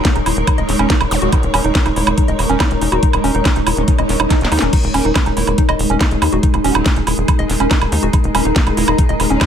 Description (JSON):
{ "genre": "psychedelic trance", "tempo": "141 BPM", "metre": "4/4", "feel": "straight", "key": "unclear", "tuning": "A4 = 440 Hz", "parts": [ { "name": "formant-sweep wobble bass", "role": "second line", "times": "0.0-9.5 s", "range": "Gb3 to Db4", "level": "-29 LUFS", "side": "right 2 dB", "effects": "none" }, { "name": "swarming drone", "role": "sustained chords", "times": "0.0-9.5 s", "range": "Ab3 to Db5", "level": "-22 LUFS", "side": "right 2 dB", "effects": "built-in reverb, sidechain pumping" }, { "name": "electronic kick drum", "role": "drums", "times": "0.0-9.5 s", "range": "none", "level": "-15 LUFS", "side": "equal", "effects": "none" }, { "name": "garage drum kit", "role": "drums", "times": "0.0-9.5 s", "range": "crash cymbal, hi-hat, snare drum, woodblock", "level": "-19 LUFS", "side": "right 3 dB", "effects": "none" }, { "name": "granular cloud pad", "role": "texture", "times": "0.0-9.5 s", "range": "Eb4 to Bb5", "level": "-22 LUFS", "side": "left 2 dB", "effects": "built-in reverb, sidechain pumping" }, { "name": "woody wave-folded pluck", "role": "riff", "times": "0.2-9.5 s", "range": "Db4 to Eb5", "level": "-21 LUFS", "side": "moving between left 4 dB and right 5 dB", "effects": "chorus, auto-pan, sidechain pumping, ping-pong delay" }, { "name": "tight sequencer bass", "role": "bass", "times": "0.2-9.4 s", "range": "Eb1 to Eb2", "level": "-19 LUFS", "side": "equal", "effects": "none" }, { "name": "zap and swell", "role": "sound effects", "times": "1.1-1.2, 4.1-4.7 s", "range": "none", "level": "-24 LUFS", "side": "equal", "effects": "none" } ], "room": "little or no reverb", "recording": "none", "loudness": "-12 LUFS", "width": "side -8 dB against mid", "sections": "0.0-4.7 A section; 4.7-9.5 B section", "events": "swell 4.1-4.7; drum fill 4.3-4.7; drop 4.7-9.5", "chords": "0.0 Eb5" }